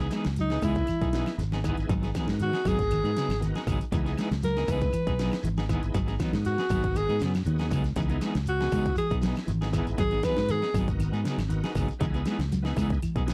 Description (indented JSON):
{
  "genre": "afrobeat",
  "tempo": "119 BPM",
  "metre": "4/4",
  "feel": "swing 53% on 16ths",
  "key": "C# dorian",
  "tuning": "A4 = 441 Hz",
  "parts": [
    { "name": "bright tonewheel organ", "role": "accompaniment", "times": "0.0-13.3 s", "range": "B3 to A#4", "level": "-41 LUFS", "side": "equal", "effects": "slow rotary speaker, chorus vibrato" },
    { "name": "electric guitar at the edge of break-up", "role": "stabs", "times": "0.0-13.3 s", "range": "E3 to G#4", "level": "-38 LUFS", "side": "equal", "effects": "tremolo" },
    { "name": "fingered electric bass", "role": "bass", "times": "0.0-13.3 s", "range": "G#1 to G#2", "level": "-32 LUFS", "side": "equal", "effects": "none" },
    { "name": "dubstep drum kit", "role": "drums", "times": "0.0-13.3 s", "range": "hi-hat, kick drum, snare drum", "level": "-34 LUFS", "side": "equal", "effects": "overdrive" },
    { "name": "shekere", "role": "percussion", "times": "0.0-13.3 s", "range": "none", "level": "-42 LUFS", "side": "equal", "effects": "none" },
    { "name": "mellow electric guitar", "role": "arpeggios", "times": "0.1-13.3 s", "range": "C#3 to G#3", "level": "-35 LUFS", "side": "equal", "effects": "spring reverb" },
    { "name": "claves", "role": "percussion", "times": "0.1-13.2 s", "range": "none", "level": "-52 LUFS", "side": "equal", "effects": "none" },
    { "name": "bright alto saxophone", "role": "melody", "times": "0.4-10.8 s", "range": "D#4 to B4", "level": "-31 LUFS", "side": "equal", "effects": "slapback echo" }
  ],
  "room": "little or no reverb",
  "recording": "dry, close 1970s-style studio recording",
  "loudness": "-27 LUFS",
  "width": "mono",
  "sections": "0.0-13.3 A section",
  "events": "alto saxophone solo 0.0-13.3",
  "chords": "0.0 C#m9; 1.9 G#m7; 3.9 C#m9; 5.9 G#m7; 8.0 C#m9; 10.0 G#m7; 12.0 C#m9"
}